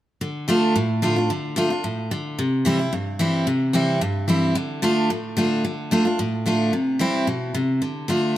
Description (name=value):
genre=bluegrass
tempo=221 BPM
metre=4/4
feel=straight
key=D minor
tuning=A4 = 445 Hz
part: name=picked steel-string acoustic guitar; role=solo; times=0.2-8.4 s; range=G2 to F4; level=-20 LUFS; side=equal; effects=tape echo
room=moderate studio reverb, RT60 0.8 s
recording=none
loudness=-20 LUFS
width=side -13 dB against mid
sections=0.2-8.4 A section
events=none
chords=0.2 Dm; 2.4 C; 4.6 Dm; 6.7 C; 7.8 Dm